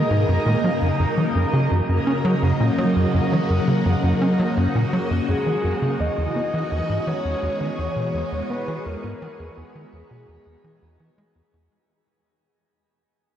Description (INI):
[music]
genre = ambient, sequencer-driven space music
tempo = 84 BPM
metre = 4/4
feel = straight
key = unclear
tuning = A4 = 439 Hz
[part]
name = phased string machine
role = sustained chords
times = 0.0-11.7 s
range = B2 to A#4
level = -23 LUFS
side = equal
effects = ensemble chorus, phaser
[part]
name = tight sequencer bass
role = riff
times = 0.0-11.7 s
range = E2 to C#4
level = -22 LUFS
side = equal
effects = tape echo
[part]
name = bubbling stepped-filter texture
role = texture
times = 0.0-11.7 s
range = D#4 to D#5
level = -30 LUFS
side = right 1 dB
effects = chorus, built-in reverb
[part]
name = soft octave-layered synth lead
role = melody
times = 5.3-11.4 s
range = G#4 to D#5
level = -28 LUFS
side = left 1 dB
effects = chorus, phaser, tape echo
[sound]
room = wet shimmer reverb, RT60 9.2 s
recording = worn, warbling old tape, cassette tape, warbly pitch drift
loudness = -19 LUFS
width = side -10 dB against mid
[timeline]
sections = 0.0-11.7 A section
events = fade-out 4.1-11.7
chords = 0.3 F#; 6.0 Eadd9